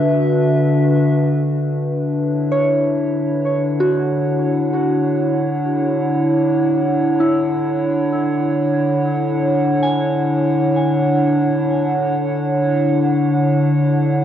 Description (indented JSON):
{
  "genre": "ambient",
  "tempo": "free time",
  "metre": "none",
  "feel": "none",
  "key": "D lydian",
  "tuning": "A4 = 439 Hz",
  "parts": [
    { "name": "warbly tape-like pad", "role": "sustained chords", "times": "0.0-14.2 s", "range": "D3 to F#5", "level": "-16 LUFS", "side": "equal", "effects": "chorus, built-in reverb" },
    { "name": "soft synth bell", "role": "arpeggios", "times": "2.5-14.2 s", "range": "E4 to G#5", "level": "-23 LUFS", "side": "right 1 dB", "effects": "chorus, phaser, analog delay" }
  ],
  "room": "moderate spring reverb, RT60 1.5 s, digital ambience",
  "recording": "home recording on cassette",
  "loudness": "-15 LUFS",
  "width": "side -10 dB against mid",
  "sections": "0.0-1.4 A section; 1.4-14.2 B section",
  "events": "none",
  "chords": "0.0 Bm/D; 1.4 Dmaj9"
}